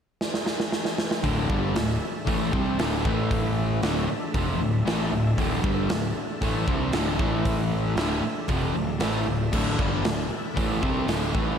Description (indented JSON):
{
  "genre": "hard rock",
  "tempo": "116 BPM",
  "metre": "4/4",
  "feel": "straight",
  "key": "unclear",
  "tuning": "A4 = 440 Hz",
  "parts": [
    { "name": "big rock drum kit", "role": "drums", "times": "0.2-11.5 s", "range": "crash cymbal, hi-hat, kick drum, snare drum", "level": "-27 LUFS", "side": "equal", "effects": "none" },
    { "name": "overdriven tonewheel organ", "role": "sustained chords", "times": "1.2-11.6 s", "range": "A3 to E5", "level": "-36 LUFS", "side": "left 1 dB", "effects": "none" },
    { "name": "distorted electric guitar", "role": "riff", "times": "1.2-11.6 s", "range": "D2 to C4", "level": "-30 LUFS", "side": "equal", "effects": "overdrive, slapback echo" },
    { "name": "overdriven semi-hollow guitar", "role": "riff", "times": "1.2-11.6 s", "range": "D2 to C4", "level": "-31 LUFS", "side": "left 7 dB", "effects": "none" },
    { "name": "overdriven semi-hollow guitar", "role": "riff", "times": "1.2-11.6 s", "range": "D2 to C4", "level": "-30 LUFS", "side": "right 7 dB", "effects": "none" },
    { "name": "fuzz picked electric bass", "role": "bass", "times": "1.2-11.6 s", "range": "D1 to C2", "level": "-30 LUFS", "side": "equal", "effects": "overdrive" }
  ],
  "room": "moderate lush hall reverb, RT60 2.0 s",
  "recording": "big arena sound",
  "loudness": "-23 LUFS",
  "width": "side -8 dB against mid",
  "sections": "0.0-1.2 A section; 1.2-11.6 B section",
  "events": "drum fill 0.2-1.2",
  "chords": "0.0 N.C.; 1.2 D5; 3.0 A5; 3.8 D5; 7.2 A5; 8.0 D5"
}